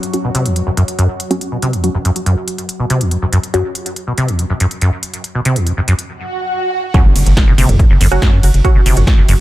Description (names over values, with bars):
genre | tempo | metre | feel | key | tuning
driving peak-time techno | 141 BPM | 4/4 | straight | unclear | A4 = 440 Hz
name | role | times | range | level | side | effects
deep dark ambient pad | drone | 0.0-9.4 s | F#3 to F#4 | -28 LUFS | left 1 dB | chorus, built-in reverb, sidechain pumping
techno drum kit | drums | 0.0-9.4 s | hi-hat, ride cymbal, snare drum, toms | -21 LUFS | equal | sidechain pumping on hats, small room ambience, sidechain pumping on cymbals, sidechain pumping on toms
filtered dub chord stab | stabs | 0.1-8.8 s | F#3 to F#4 | -21 LUFS | right 1 dB | phaser, sidechain pumping, digital delay
acid bass, saw | riff | 0.2-9.3 s | E2 to B#2 | -15 LUFS | equal | lush chorus, sidechain pumping, digital delay
swell and impact | sound effects | 6.2-8.6 s | none | -19 LUFS | equal | none
electronic kick drum | drums | 6.9-9.2 s | none | -11 LUFS | equal | small room ambience
gritty driven synth bass | bass | 7.0-9.4 s | F#1 to F#2 | -12 LUFS | equal | sidechain pumping
room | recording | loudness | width
little or no reverb | none | -12 LUFS | side -15 dB against mid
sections
0.0-6.9 A section; 6.9-9.4 B section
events
filter sweep on acid bass 0.0-6.9; filter sweep on synth stab 0.0-6.9; break 6.1-6.9; swell 6.2-6.9; drop 6.9-9.4; impact 6.9-8.6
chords
0.0 F#5